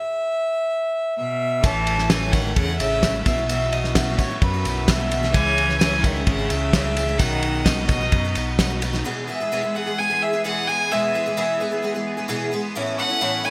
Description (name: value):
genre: indie folk with a building arrangement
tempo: 130 BPM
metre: 4/4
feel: straight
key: E major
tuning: A4 = 440 Hz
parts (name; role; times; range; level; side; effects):
- warm fiddle; melody; 0.0-13.5 s; B4 to A5; -26 LUFS; equal; digital delay
- rich cello; second line; 1.2-8.5 s; F#2 to E3; -30 LUFS; equal; digital delay
- picked twelve-string acoustic guitar; accompaniment; 1.6-13.5 s; E2 to G#4; -30 LUFS; equal; ensemble chorus
- warm chamber string section; sustained chords; 1.6-13.5 s; E3 to E5; -37 LUFS; equal; none
- fingered electric bass; bass; 1.6-9.0 s; G#1 to F#2; -28 LUFS; equal; none
- cloth-damped thuddy drum kit; drums; 1.6-9.0 s; kick drum, ride cymbal, snare drum; -24 LUFS; equal; gated reverb
- tambourine; percussion; 1.6-9.0 s; none; -40 LUFS; equal; none
room: light reverb, studio reverb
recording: bright 1980s-style digital production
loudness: -22 LUFS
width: mono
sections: 0.0-1.6 A section; 1.6-9.1 B section; 9.1-13.5 C section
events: stop 0.0-1.6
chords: 0.0 E5; 1.6 A; 3.3 Bsus4; 5.3 C#m; 7.2 B; 9.1 E; 12.8 Aadd9